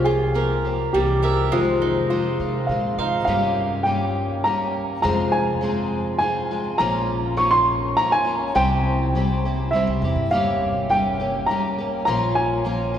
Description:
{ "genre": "acoustic folk duo or small band", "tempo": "102 BPM", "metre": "3/4", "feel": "straight", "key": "F minor", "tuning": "A4 = 440 Hz", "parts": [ { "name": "dark upright piano", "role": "melody", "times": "0.0-13.0 s", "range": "F4 to Db6", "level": "-22 LUFS", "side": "equal", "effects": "none" }, { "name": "fingerpicked twelve-string acoustic guitar", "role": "accompaniment", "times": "0.0-13.0 s", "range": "F2 to G4", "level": "-25 LUFS", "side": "left 1 dB", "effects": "none" }, { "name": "upright bass", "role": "bass", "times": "0.0-13.0 s", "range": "G1 to C3", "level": "-26 LUFS", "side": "equal", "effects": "none" }, { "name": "mandolin", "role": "arpeggios", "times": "0.1-3.3 s", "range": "G3 to F5", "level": "-28 LUFS", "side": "right 3 dB", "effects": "none" } ], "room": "wet cathedral reverb, RT60 6.0 s", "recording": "recorded in a church or concert hall", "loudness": "-19 LUFS", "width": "side -9 dB against mid", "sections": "0.0-3.3 A section; 3.3-13.0 B section", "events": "none", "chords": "0.0 C7sus4; 0.9 C7; 1.5 Fm7; 3.3 Gdim; 5.0 Fm; 6.8 Bbm; 8.6 C; 10.3 Gdim; 12.1 Bbm" }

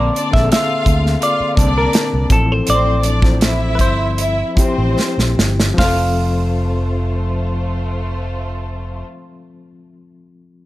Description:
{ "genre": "lush 1970s-style soul", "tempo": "72-86 BPM", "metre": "4/4", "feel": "straight", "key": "F major", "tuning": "A4 = 441 Hz", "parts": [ { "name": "semi-hollow electric guitar", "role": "melody", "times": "0.0-9.0 s", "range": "A4 to F5", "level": "-20 LUFS", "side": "equal", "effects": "none" }, { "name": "warm studio violin section", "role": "second line", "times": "0.0-9.0 s", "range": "A3 to F5", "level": "-24 LUFS", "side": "equal", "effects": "none" }, { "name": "overdriven reed electric piano", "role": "accompaniment", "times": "0.0-10.7 s", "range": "D3 to A5", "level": "-23 LUFS", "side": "left 3 dB", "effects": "fast tremolo" }, { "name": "fingered electric bass", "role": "bass", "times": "0.0-9.0 s", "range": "F1 to D2", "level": "-18 LUFS", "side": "equal", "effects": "none" }, { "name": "celesta", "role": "texture", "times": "0.0-0.7, 5.8-9.0 s", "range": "C6", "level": "-35 LUFS", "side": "right 6 dB", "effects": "none" }, { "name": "modern studio drum kit", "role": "drums", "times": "0.2-6.0 s", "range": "hi-hat, kick drum, snare drum", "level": "-16 LUFS", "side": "equal", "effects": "none" } ], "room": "small room reverb", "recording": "none", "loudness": "-14 LUFS", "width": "side -16 dB against mid", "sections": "0.0-5.8 A section; 5.8-9.1 B section", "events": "slowing down 0.0-5.8; drum fill 5.0-5.8", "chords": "0.0 Bbmaj9; 2.3 Fmaj7; 5.8 F" }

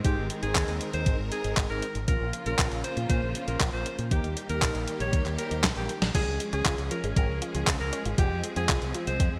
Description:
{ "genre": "italo disco", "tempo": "118 BPM", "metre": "4/4", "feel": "straight", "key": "unclear", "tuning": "A4 = 440 Hz", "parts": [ { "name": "bright alto saxophone", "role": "melody", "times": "0.0-9.3 s", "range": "G4 to Db5", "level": "-36 LUFS", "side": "equal", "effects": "digital delay" }, { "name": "clear symphonic string section", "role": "sustained chords", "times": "0.0-9.4 s", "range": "Db3 to Bb4", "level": "-39 LUFS", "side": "equal", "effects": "none" }, { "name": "mellow synth brass", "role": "stabs", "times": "0.0-5.9 s", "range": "Bb3 to Eb5", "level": "-40 LUFS", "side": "equal", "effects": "chorus" }, { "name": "fingered electric bass with an envelope filter", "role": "bass", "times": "0.0-9.4 s", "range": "F1 to Bb2", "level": "-34 LUFS", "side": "equal", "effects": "none" }, { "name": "clean 12-bit digital drum machine", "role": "drums", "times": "0.0-9.3 s", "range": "crash cymbal, handclaps, hi-hat, snare drum", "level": "-32 LUFS", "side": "equal", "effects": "gated reverb" }, { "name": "electronic kick drum", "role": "drums", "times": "0.0-9.3 s", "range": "none", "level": "-29 LUFS", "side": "equal", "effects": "none" }, { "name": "analog pluck", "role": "arpeggios", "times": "6.1-9.2 s", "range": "F3 to F4", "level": "-40 LUFS", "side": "equal", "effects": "chorus, digital delay" } ], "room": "moderate lush hall reverb, RT60 1.6 s", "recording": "bright 1980s-style digital production", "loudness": "-28 LUFS", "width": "mono", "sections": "0.0-6.1 A section; 6.1-9.4 B section", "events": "drum fill 5.6-6.1; band accent 6.0", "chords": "0.0 Ab; 2.1 Bbm; 4.1 Eb; 6.1 Db; 8.2 Fm" }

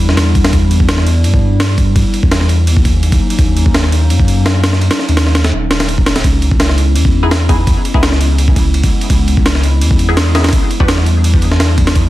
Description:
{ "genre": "drum and bass, jungle", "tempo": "168 BPM", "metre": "4/4", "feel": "straight", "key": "C# dorian", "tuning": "A4 = 440 Hz", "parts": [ { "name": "warbly tape-like pad", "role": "sustained chords", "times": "0.0-12.1 s", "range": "F#3 to E4", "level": "-20 LUFS", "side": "left 1 dB", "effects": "chorus, built-in reverb" }, { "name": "saturated sub bass", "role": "bass", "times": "0.0-12.1 s", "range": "D#1 to G2", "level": "-12 LUFS", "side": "equal", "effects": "none" }, { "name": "jungle sampler-style drum kit", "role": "drums", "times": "0.1-12.0 s", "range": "kick drum, ride cymbal, snare drum", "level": "-13 LUFS", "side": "equal", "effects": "none" }, { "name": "filtered dub chord stab", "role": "stabs", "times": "7.2-10.9 s", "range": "B3 to B4", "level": "-21 LUFS", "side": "left 2 dB", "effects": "phaser, wide subtle chorus, cassette tape, dub echo" } ], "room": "little or no reverb", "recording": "dense, heavily limited modern master, vinyl crackle", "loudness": "-9 LUFS", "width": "side -16 dB against mid", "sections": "0.0-12.1 A section", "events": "none", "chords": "0.0 Em7; 2.7 D#m7; 6.2 C#m7; 10.5 Em7" }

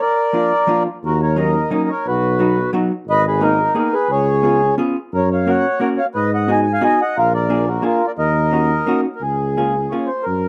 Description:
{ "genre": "musette waltz", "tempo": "176 BPM", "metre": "3/4", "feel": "straight", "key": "Eb minor", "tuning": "A4 = 440 Hz", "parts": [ { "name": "mellow accordion", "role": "melody", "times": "0.0-10.5 s", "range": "Eb4 to Ab5", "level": "-20 LUFS", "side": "equal", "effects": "slapback echo" }, { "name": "hollow-body jazz guitar", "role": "accompaniment", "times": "0.3-10.1 s", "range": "F3 to Bb4", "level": "-22 LUFS", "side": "equal", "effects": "slapback echo" }, { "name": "breathy tuba", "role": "bass", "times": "1.0-10.5 s", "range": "Ab1 to Ab2", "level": "-22 LUFS", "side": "equal", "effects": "none" } ], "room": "little or no reverb", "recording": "recorded outdoors, with no room sound", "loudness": "-17 LUFS", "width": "mono", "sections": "0.0-9.2 A section; 9.2-10.5 B section", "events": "none", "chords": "0.0 Bb; 1.0 Ebm7; 2.1 B; 3.1 Abmadd9; 4.1 Db7; 5.1 Gb; 6.2 Abm7; 7.2 Bb7; 8.2 Ebm7; 9.2 Db6" }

